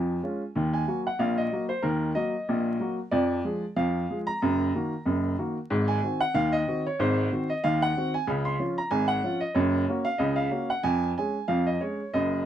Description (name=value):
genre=ragtime piano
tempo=93 BPM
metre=2/4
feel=swing 55% on 16ths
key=Db major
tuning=A4 = 440 Hz
part: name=warm upright piano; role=solo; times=0.0-12.5 s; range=Gb1 to C6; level=-24 LUFS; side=equal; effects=none
room=light reverb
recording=close, detailed microphones, vinyl crackle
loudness=-24 LUFS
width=side -10 dB against mid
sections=0.0-12.5 A section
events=none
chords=0.0 Db/F; 0.5 Ebm; 3.1 Ddim/F; 4.4 Ebm/Gb; 5.7 Ab7; 8.3 Db; 9.6 Gb; 10.9 Db/F